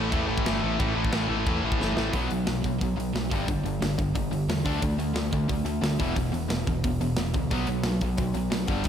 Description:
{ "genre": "punk rock", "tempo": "178 BPM", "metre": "4/4", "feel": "straight", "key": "unclear", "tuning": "A4 = 440 Hz", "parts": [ { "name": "distorted electric guitar", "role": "riff", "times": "0.0-8.9 s", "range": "E2 to D4", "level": "-30 LUFS", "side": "left 8 dB", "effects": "overdrive, slapback echo" }, { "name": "distorted electric guitar", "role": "riff", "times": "0.0-2.1 s", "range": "A2 to A3", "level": "-34 LUFS", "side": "equal", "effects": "overdrive" }, { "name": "sludgy distorted guitar", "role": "riff", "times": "0.0-8.9 s", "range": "E2 to D4", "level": "-30 LUFS", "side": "right 7 dB", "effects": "overdrive" }, { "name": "growling picked electric bass", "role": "bass", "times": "0.0-8.9 s", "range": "E1 to E2", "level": "-32 LUFS", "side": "equal", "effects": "overdrive" }, { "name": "tight metal drum kit", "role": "drums", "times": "0.1-8.9 s", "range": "crash cymbal, hi-hat, kick drum, snare drum", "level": "-30 LUFS", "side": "equal", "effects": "none" } ], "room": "moderate lush hall reverb, RT60 2.3 s", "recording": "big arena sound", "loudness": "-24 LUFS", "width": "side -8 dB against mid", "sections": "0.0-2.1 A section; 2.1-8.9 B section", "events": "drum fill 1.8-2.1", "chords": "0.0 A5; 2.1 B5; 3.3 G5; 4.7 D5; 6.0 E5; 7.5 B5" }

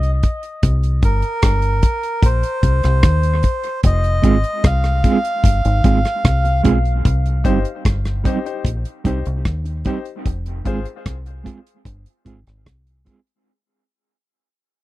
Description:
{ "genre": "dub reggae", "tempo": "75 BPM", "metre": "4/4", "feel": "straight", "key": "C minor", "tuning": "A4 = 439 Hz", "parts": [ { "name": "deep dub fingered electric bass", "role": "bass", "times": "0.0-13.0 s", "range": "F1 to Eb2", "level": "-17 LUFS", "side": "equal", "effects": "none" }, { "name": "damped 70s drum kit", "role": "drums", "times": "0.0-13.5 s", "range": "hi-hat, kick drum, rim click", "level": "-17 LUFS", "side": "equal", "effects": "none" }, { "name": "melodica", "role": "melody", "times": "1.0-6.6 s", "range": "Bb4 to F5", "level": "-22 LUFS", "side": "equal", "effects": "dub echo" }, { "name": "mellow electric guitar", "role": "accompaniment", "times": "4.2-13.2 s", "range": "G3 to Ab4", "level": "-21 LUFS", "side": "right 5 dB", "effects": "tremolo, dub echo" }, { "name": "clear grand piano", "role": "stabs", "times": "7.4-10.8 s", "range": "Eb4 to C5", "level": "-29 LUFS", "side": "left 8 dB", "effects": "dub echo" } ], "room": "little or no reverb", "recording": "dry, close 1970s-style studio recording", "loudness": "-15 LUFS", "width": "side -17 dB against mid", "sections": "0.0-7.0 A section; 7.0-13.5 B section", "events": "break 0.0-7.0, 10.3-13.5; fade-out 7.0-13.5", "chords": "0.0 N.C.; 0.6 Cm; 3.8 Fm; 7.0 Cm; 10.3 Fm" }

